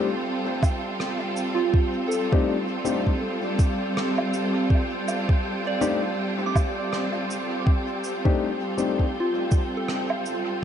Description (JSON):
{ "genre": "ambient dub", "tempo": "81 BPM", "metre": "4/4", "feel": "swing 58% on 16ths", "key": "F major", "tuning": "A4 = 439 Hz", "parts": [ { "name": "clear studio string section", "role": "sustained chords", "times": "0.0-10.6 s", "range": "G3 to A4", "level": "-27 LUFS", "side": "right 1 dB", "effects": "none" }, { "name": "soft synth bell", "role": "arpeggios", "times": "0.0-10.6 s", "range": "F4 to D6", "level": "-31 LUFS", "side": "right 3 dB", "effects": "chorus, phaser, dub echo" }, { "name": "dark upright piano", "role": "stabs", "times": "0.0-9.0 s", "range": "A3 to G4", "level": "-29 LUFS", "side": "left 6 dB", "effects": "dub echo" }, { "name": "wind-like tuned noise texture", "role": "texture", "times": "0.0-10.6 s", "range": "G4 to G5", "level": "-33 LUFS", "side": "left 1 dB", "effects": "built-in reverb" }, { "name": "electronic kick drum", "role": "drums", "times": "0.6-9.7 s", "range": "none", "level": "-21 LUFS", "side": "equal", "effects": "none" }, { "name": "woodblock, cabasa and rim click", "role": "drums", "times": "0.6-10.4 s", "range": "none", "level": "-33 LUFS", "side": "right 2 dB", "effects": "dub echo" } ], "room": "light reverb, studio reverb", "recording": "echo-heavy mix, nothing above 10.6 kHz", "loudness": "-22 LUFS", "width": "side -9 dB against mid", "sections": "0.0-10.6 A section", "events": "none", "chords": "0.0 F69" }